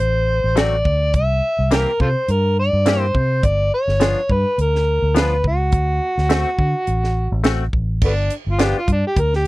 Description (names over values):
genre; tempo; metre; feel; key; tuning
straight-eighth soul blues; 105 BPM; 4/4; swing 55% on 16ths; unclear; A4 = 440 Hz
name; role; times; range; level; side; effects
overdriven harmonica; melody; 0.0-9.5 s; A3 to E5; -20 LUFS; equal; none
vintage muted fingered electric bass; bass; 0.0-9.5 s; G1 to D3; -19 LUFS; equal; none
direct-recorded clean electric guitar; stabs; 0.6-8.8 s; E3 to G4; -22 LUFS; left 5 dB; lush chorus
tight funk drum kit; drums; 0.6-9.4 s; crash cymbal, hi-hat, kick drum, snare drum; -20 LUFS; right 1 dB; none
room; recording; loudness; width
little or no reverb; dry, close 1970s-style studio recording; -16 LUFS; side -19 dB against mid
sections
0.0-8.0 A section; 8.0-9.5 B section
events
harmonica solo 8.0-9.5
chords
0.0 D7; 1.1 C7; 3.4 G7; 5.7 D7; 8.0 G7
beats
0.00 0.57 | 1.14 1.72 2.29 2.86 | 3.44 4.01 4.58 5.16 | 5.73 6.30 6.88 7.45 | 8.03 8.60 9.17